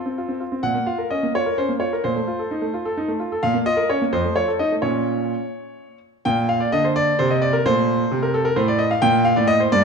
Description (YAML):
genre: classical-period piano sonatina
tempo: 86 BPM (dotted quarters)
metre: 6/8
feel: straight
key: Bb minor, Bb major from 6.3 s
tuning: A4 = 441 Hz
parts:
  - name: bright concert grand piano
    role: solo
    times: 0.0-9.8 s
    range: F2 to G5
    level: -18 LUFS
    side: equal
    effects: none
room: moderate recital hall reverb, RT60 1.6 s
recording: dark, warm production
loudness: -18 LUFS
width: side -5 dB against mid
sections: 0.0-6.3 A section; 6.3-9.8 A section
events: none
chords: 0.0 F; 0.6 Bbm; 2.0 F7/Bb; 3.4 Bbm; 4.1 F7; 4.8 Bbm; 6.3 Bb; 7.7 Bbmaj7sus2; 9.0 Bbmaj13